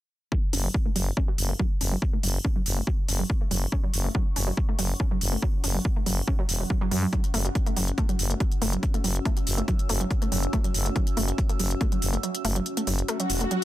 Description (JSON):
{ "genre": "driving peak-time techno", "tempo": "141 BPM", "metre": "4/4", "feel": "straight", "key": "F# minor", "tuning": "A4 = 441 Hz", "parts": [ { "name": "analog pluck", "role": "riff", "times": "0.3-13.6 s", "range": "F#3 to C#4", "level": "-32 LUFS", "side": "right 1 dB", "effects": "chorus, cassette tape, sidechain pumping, ping-pong delay" }, { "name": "electronic kick drum", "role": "drums", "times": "0.3-11.9 s", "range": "none", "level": "-25 LUFS", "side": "equal", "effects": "overdrive" }, { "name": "deep dark ambient pad", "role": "texture", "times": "2.7-13.6 s", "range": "C#4 to E6", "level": "-37 LUFS", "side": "equal", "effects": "chorus, built-in reverb, sidechain pumping" }, { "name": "growling FM bass", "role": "bass", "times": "0.5-13.4 s", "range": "E1 to F#2", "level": "-27 LUFS", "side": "equal", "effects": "sidechain pumping" }, { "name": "electronic hi-hat", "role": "drums", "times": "0.5-13.6 s", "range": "none", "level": "-30 LUFS", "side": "equal", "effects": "overdrive" }, { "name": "swell", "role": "sound effects", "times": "13.2-13.6 s", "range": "none", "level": "-30 LUFS", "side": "left 4 dB", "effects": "none" } ], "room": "little or no reverb", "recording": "dense, heavily limited modern master", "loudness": "-23 LUFS", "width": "side -15 dB against mid", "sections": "0.3-13.6 A section", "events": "fade-in on ambient pad 0.3-13.6; filter sweep on synth arpeggio sound 0.3-13.6; kick drops out 12.2-13.6; swell 13.2-13.6", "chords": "0.3 F#5" }